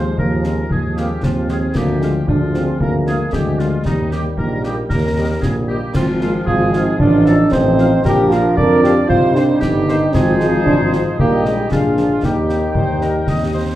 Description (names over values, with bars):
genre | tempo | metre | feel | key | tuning
military-style march for wind band | 114 BPM | 2/4 | straight | Eb major | A4 = 441 Hz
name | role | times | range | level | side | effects
warm euphonium | second line | 0.0-13.8 s | Eb3 to Bb4 | -18 LUFS | right 2 dB | none
warm woodwind section | second line | 0.0-13.8 s | Eb4 to Eb5 | -24 LUFS | equal | none
mellow French horn section | accompaniment | 0.0-13.8 s | G3 to Ab4 | -24 LUFS | left 3 dB | none
bright trombone section | sustained chords | 0.0-13.8 s | F3 to Eb4 | -24 LUFS | right 1 dB | none
warm tuba | bass | 0.0-13.7 s | G1 to F2 | -19 LUFS | equal | none
concert bass drum, concert snare drum and clash cymbals | drums | 0.2-13.8 s | none | -21 LUFS | left 1 dB | none
mellow trumpet section | melody | 0.4-13.8 s | C5 to G5 | -29 LUFS | equal | none
room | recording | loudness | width
wet large studio reverb, RT60 0.9 s | heard from further back in the room | -13 LUFS | side -14 dB against mid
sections
0.0-13.8 A section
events
none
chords
0.0 Fm7/Eb; 1.8 Bb7/D; 3.9 Eb; 6.0 Fm/Ab; 7.0 F7/A; 8.0 Bb; 9.1 Cm7; 10.1 Fm7/Ab; 11.2 Eb/Bb; 11.7 Bb7; 12.2 Eb